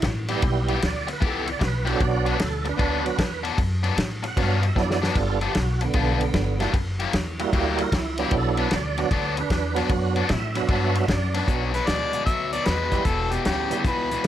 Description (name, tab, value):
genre	electric blues shuffle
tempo	152 BPM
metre	4/4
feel	swing 66% on 8ths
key	B minor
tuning	A4 = 437 Hz
part	tonewheel organ	accompaniment	0.0-13.8 s	D3 to F#5	-27 LUFS	right 6 dB	slow rotary speaker, overdrive, chorus vibrato
part	overdriven electric guitar	riff	0.0-14.3 s	E2 to G4	-28 LUFS	left 7 dB	none
part	upright bass	bass	0.0-14.3 s	E1 to A2	-27 LUFS	equal	none
part	warm soul drum kit	drums	0.0-14.3 s	hi-hat, kick drum, ride cymbal, snare drum, splash cymbal	-26 LUFS	equal	none
part	warm harmonica	melody	11.7-14.3 s	G4 to E5	-26 LUFS	equal	overdrive
room	light reverb, small room ambience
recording	none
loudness	-21 LUFS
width	side -11 dB against mid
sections	0.0-11.5 A section; 11.5-14.3 B section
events	drum fill 4.8-5.2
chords	0.0 Em; 2.0 Bm; 5.2 G7; 6.7 F#7b9; 8.3 Bm; 13.1 Em